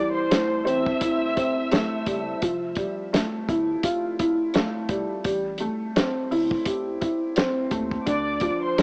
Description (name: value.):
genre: hip hop, boom-bap hip-hop.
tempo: 85 BPM.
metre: 4/4.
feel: swing 56% on 16ths.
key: unclear.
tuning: A4 = 440 Hz.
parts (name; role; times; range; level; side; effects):
warm studio violin section; melody; 0.0-2.4, 8.1-8.8 s; C5 to E6; -30 LUFS; equal; high-pass filter, low-pass filter, tape echo.
dark upright piano; accompaniment; 0.0-8.8 s; D3 to G4; -27 LUFS; equal; cassette tape, high-pass filter, low-pass filter.
saturated sub bass; bass; 0.0-8.5 s; F1 to Eb2; -41 LUFS; equal; none.
warm soul drum kit; drums; 0.3-8.8 s; hi-hat, kick drum, snare drum; -27 LUFS; equal; none.
room: moderate spring reverb, RT60 1.6 s, studio reverb.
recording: home recording on cassette, small speaker sound.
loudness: -25 LUFS.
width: mono.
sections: 0.0-8.8 A section.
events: none.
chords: 0.0 C6; 2.4 Fmaj9; 5.2 Am7; 8.1 Dm7.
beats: 0.31 1.01 1.72 | 2.42 3.13 3.84 4.54 | 5.25 5.95 6.66 7.37 | 8.07 8.78.